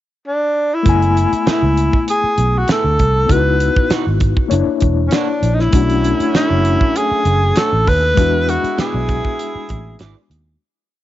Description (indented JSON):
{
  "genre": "lush 1970s-style soul",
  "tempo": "98 BPM",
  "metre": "4/4",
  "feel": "swing 54% on 16ths",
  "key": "unclear",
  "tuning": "A4 = 440 Hz",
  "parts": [
    { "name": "breathy tenor saxophone", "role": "melody", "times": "0.3-10.0 s", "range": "C#4 to B4", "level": "-17 LUFS", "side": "equal", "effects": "cassette tape" },
    { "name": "mellow reed electric piano", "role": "accompaniment", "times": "0.8-10.6 s", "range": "G#3 to G#5", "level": "-20 LUFS", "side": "left 8 dB", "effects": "fast tremolo, cassette tape" },
    { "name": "vintage muted fingered electric bass", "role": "bass", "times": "0.9-10.6 s", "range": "E1 to E2", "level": "-17 LUFS", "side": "right 1 dB", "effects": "none" },
    { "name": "damped 70s drum kit", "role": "drums", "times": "0.9-10.5 s", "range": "hi-hat, kick drum, snare drum", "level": "-18 LUFS", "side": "right 1 dB", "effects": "cassette tape" },
    { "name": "electric guitar through a small old amp", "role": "riff", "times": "1.5-10.1 s", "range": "E3 to D5", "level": "-27 LUFS", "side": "right 9 dB", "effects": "cassette tape" },
    { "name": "mellow horn section", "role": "stabs", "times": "5.7-10.3 s", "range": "F#3 to E4", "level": "-27 LUFS", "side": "right 8 dB", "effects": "cassette tape" }
  ],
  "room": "small room ambience",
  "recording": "home recording on cassette, nothing above 7.8 kHz",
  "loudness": "-13 LUFS",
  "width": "side -14 dB against mid",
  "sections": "0.0-0.9 pickup bar; 0.9-10.6 pre-chorus",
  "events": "fade-out 8.2-10.6",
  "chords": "0.0 N.C.; 0.9 F#m11; 3.3 C#m11; 4.5 F#7b13; 5.7 Bm9; 8.2 E7",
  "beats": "0.24 | 0.86 1.47 2.08 2.69 | 3.30 3.91 4.52 5.12 | 5.73 6.34 6.95 7.56 | 8.17 8.78 9.39 10.00"
}